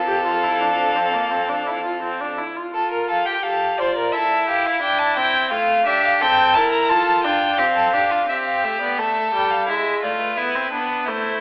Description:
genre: classical, baroque-style fugue for string quartet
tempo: 86 BPM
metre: 4/4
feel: straight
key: F major, A minor from 8.3 s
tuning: A4 = 440 Hz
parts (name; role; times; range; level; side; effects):
- rich violin; melody; 0.0-11.4 s; B4 to Bb5; -21 LUFS; equal; none
- clear violin; second line; 0.0-11.4 s; D4 to C5; -20 LUFS; equal; none
- rich cello; bass; 0.0-2.3 s; F2; -31 LUFS; equal; none
- clear viola; accompaniment; 0.1-11.4 s; G3 to G4; -23 LUFS; equal; none
room: moderate recital hall reverb, RT60 1.5 s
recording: telephone sound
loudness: -17 LUFS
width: side -30 dB against mid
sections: 0.0-2.7 A section; 2.7-8.3 B section; 8.3-11.4 C section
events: none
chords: 0.0 F; 4.1 C/E; 5.5 F/A; 6.9 F; 8.3 Am; 9.7 E7/G#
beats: 0.61 1.31 2.03 | 2.74 3.44 4.14 4.83 | 5.52 6.21 6.90 7.59 | 8.29 8.99 9.69 10.38 | 11.07

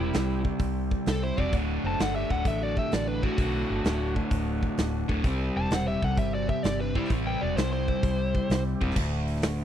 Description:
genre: blues rock power trio and southern rock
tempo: 129 BPM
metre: 4/4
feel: swing 68% on 8ths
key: D mixolydian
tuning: A4 = 440 Hz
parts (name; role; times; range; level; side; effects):
- biting lead guitar; melody; 0.0-8.6 s; E4 to A5; -31 LUFS; left 1 dB; overdrive
- biting lead guitar; second line; 0.0-8.6 s; G3 to C5; -39 LUFS; right 6 dB; overdrive
- overdriven tonewheel organ; sustained chords; 0.0-8.9 s; F#3 to G4; -42 LUFS; right 6 dB; lush chorus
- overdriven semi-hollow guitar; riff; 0.0-9.6 s; D2 to C4; -30 LUFS; left 1 dB; none
- vintage muted fingered electric bass; bass; 0.0-9.6 s; D1 to C2; -31 LUFS; equal; none
- big rock drum kit; drums; 0.1-9.6 s; crash cymbal, hi-hat, kick drum, snare drum; -30 LUFS; equal; none
room: little or no reverb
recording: dry, close 1970s-style studio recording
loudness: -25 LUFS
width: side -10 dB against mid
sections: 0.0-9.0 A section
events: none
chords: 0.0 C; 1.5 D; 5.2 C; 9.0 D5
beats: 0.13 0.59 1.06 | 1.52 1.99 2.45 2.92 | 3.38 3.85 4.31 4.78 | 5.24 5.71 6.17 6.64 | 7.10 7.57 8.03 8.50 | 8.96 9.43

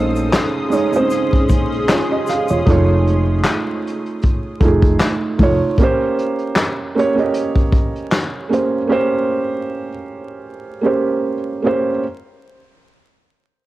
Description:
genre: lo-fi hip hop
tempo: 77 BPM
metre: 4/4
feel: swing 56% on 16ths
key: Bb dorian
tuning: A4 = 440 Hz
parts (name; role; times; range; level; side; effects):
- felt-muted upright piano; accompaniment; 0.0-12.0 s; Ab3 to F5; -18 LUFS; right 3 dB; low-pass filter, cassette tape
- granular cloud pad; sustained chords; 0.0-2.6 s; Db4 to Eb6; -24 LUFS; left 2 dB; built-in reverb, low-pass filter, cassette tape
- upright bass; bass; 0.0-5.6 s; E1 to Bb1; -18 LUFS; equal; none
- tube shaker; percussion; 0.2-2.6 s; none; -42 LUFS; left 7 dB; none
- vintage brush drum kit; drums; 0.3-8.7 s; handclaps, hi-hat, kick drum, snare drum; -17 LUFS; equal; none
room: light reverb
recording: home recording on cassette, vinyl crackle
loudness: -15 LUFS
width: side -16 dB against mid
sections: 0.0-12.0 A section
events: none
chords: 0.0 Bbm11; 2.7 F7alt; 5.8 Bbm69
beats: 0.33 1.11 1.89 | 2.67 3.44 4.22 5.00 | 5.78 6.56 7.34 8.12 | 8.90 9.68 10.46 11.24

